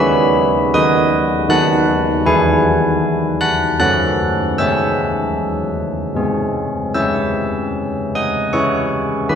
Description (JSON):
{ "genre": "classical, tune for church bells", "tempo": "78 BPM", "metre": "3/4", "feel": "straight", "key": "C# minor", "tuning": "A4 = 440 Hz", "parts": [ { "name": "carillon bells", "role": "solo", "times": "0.0-9.4 s", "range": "D#3 to F#6", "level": "-14 LUFS", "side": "equal", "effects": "none" } ], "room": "wet concert hall reverb, RT60 2.4 s", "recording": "heard from further back in the room", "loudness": "-14 LUFS", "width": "side -8 dB against mid", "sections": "0.0-9.4 A section", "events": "none", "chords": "0.0 B/D#; 2.3 E; 3.8 F#m; 4.6 C#m/G#; 6.2 G#; 6.9 C#m" }